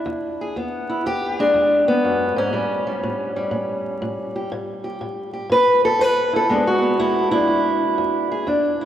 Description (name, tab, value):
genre	acoustic country blues, solo or duo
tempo	121 BPM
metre	4/4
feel	swing 66% on 8ths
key	unclear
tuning	A4 = 440 Hz
part	fingerpicked steel-string acoustic guitar	solo	0.0-8.9 s	E2 to B4	-18 LUFS	equal	none
room	wet cathedral reverb, RT60 4.5 s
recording	recorded in a church or concert hall, vinyl crackle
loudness	-18 LUFS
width	side -10 dB against mid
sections	0.0-8.9 A section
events	none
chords	0.0 E7; 2.5 A7; 6.5 E7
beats	0.07 | 0.56 1.06 1.55 2.05 | 2.54 3.04 3.53 4.03 | 4.52 5.01 5.51 6.00 | 6.50 6.99 7.49 7.98 | 8.48